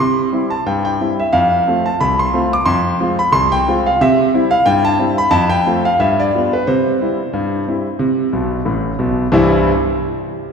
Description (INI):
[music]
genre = ragtime piano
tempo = 90 BPM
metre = 2/4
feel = swing 57% on 16ths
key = C major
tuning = A4 = 442 Hz
[part]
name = clear concert grand piano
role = solo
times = 0.0-9.7 s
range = A1 to D6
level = -13 LUFS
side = equal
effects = none
[sound]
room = wet church reverb, RT60 3.0 s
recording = recorded in a church or concert hall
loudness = -13 LUFS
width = side -6 dB against mid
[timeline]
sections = 0.0-9.3 A section; 9.3-10.5 B section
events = grand piano fill 8.3-9.3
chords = 0.0 C; 1.3 F; 2.7 Fm; 4.0 C; 5.3 F; 6.0 G7; 6.7 C